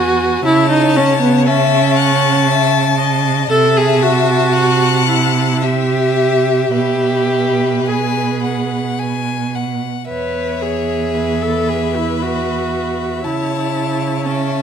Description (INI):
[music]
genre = classical, slow romantic movement for string quartet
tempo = 53-59 BPM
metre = 3/4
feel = rubato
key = unclear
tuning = A4 = 438 Hz
[part]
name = rich violin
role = melody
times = 0.0-14.6 s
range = B4 to F#5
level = -21 LUFS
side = left 11 dB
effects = none
[part]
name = clear violin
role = second line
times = 0.0-14.6 s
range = E5 to A5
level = -21 LUFS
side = left 8 dB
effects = none
[part]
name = warm viola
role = accompaniment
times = 0.0-14.6 s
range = B3 to B4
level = -17 LUFS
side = right 1 dB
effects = none
[part]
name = rich cello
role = bass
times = 0.0-14.6 s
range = E2 to C#3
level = -18 LUFS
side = right 6 dB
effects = none
[sound]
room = moderate recital hall reverb, RT60 1.7 s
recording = none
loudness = -13 LUFS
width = side -7 dB against mid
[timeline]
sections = 0.0-14.6 A section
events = none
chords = 0.4 A/C#; 3.5 Am/C; 5.6 C; 6.7 E/B; 9.0 B5; 10.1 E5; 13.2 A/C#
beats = | 0.45 1.47 2.48 | 3.51 4.54 5.62 | 6.74 7.87 8.98 | 10.09 11.15 12.21 | 13.24 14.26